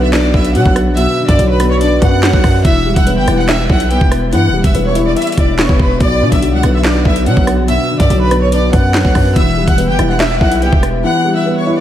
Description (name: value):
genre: hip hop, drill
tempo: 143 BPM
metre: 4/4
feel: half-time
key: B minor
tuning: A4 = 444 Hz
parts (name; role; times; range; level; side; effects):
- rich chamber violin section; melody; 0.0-11.8 s; G4 to F#6; -18 LUFS; right 1 dB; analog delay
- felt-muted upright piano; accompaniment; 0.0-11.8 s; B2 to E5; -15 LUFS; left 2 dB; lush chorus
- distorted 808-style bass; bass; 0.0-11.0 s; E1 to B2; -15 LUFS; equal; distortion
- drill drum kit; drums; 0.1-10.9 s; handclaps, hi-hat, kick drum, rim click, snare drum; -15 LUFS; equal; none
room: moderate lush hall reverb, RT60 1.7 s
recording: dreamy mix soaked in reverb, vinyl crackle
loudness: -10 LUFS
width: side -11 dB against mid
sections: 0.0-11.8 A section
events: silent gap 11.0-11.8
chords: 0.0 Bm; 2.6 Em; 6.0 Bm; 9.4 Em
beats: 0.13 0.55 | 0.97 1.39 1.81 2.23 | 2.65 3.07 3.49 3.91 | 4.33 4.75 5.17 5.58 | 6.00 6.42 6.84 7.26 | 7.68 8.10 8.52 8.94 | 9.36 9.78 10.20 10.62 | 11.04 11.46